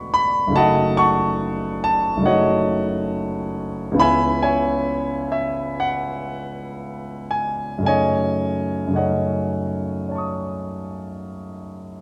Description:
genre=classical, impressionist solo piano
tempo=51-73 BPM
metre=4/4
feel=rubato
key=F# minor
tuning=A4 = 442 Hz
part: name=warm concert grand piano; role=solo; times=0.0-12.0 s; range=E1 to D#6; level=-22 LUFS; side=equal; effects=none
room=moderate scoring stage reverb, RT60 1.8 s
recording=dark, warm production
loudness=-21 LUFS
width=mono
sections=0.0-12.0 A section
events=none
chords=0.0 E9sus4; 0.5 F#m6; 4.0 C#m7; 7.9 F#m6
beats=| 0.55 1.42 2.25 3.09 | 3.99 4.89 5.81 6.78 | 7.87 8.97 10.10 11.25

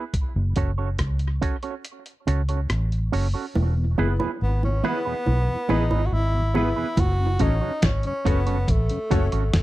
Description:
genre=dub reggae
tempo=70 BPM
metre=4/4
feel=straight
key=E major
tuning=A4 = 440 Hz
part: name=electric guitar with an envelope filter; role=accompaniment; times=0.0-9.4 s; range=B3 to C#5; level=-29 LUFS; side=right 7 dB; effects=tape echo
part: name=dusty soul sampler-style drum kit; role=drums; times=0.1-9.6 s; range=hi-hat, kick drum, rim click, snare drum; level=-24 LUFS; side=equal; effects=none
part: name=vintage muted fingered electric bass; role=bass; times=0.4-9.6 s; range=E1 to C#2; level=-22 LUFS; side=equal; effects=none
part: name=bongos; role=percussion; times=3.6-7.2 s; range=none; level=-31 LUFS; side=right 4 dB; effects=tape echo
part: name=mellow tonewheel organ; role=accompaniment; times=3.8-9.2 s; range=E2 to C#4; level=-31 LUFS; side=left 3 dB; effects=chorus vibrato, slow rotary speaker
part: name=clear upright piano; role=stabs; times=4.0-9.3 s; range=B3 to C#5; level=-31 LUFS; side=left 5 dB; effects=tape echo
part: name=breathy tenor saxophone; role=melody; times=4.4-9.6 s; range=A3 to F#4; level=-28 LUFS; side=equal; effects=tape echo
room=little or no reverb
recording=dry, close 1970s-style studio recording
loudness=-21 LUFS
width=side -16 dB against mid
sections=0.0-3.6 A section; 3.6-9.6 B section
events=break 0.0-3.6; kick muted 1.8-3.6; part muted 3.6-7.0, 7.0-9.6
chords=0.1 F#m; 3.6 E; 7.0 F#m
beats=| 0.14 0.99 1.85 2.70 | 3.56 4.41 5.26 6.12 | 6.97 7.83 8.68 9.54

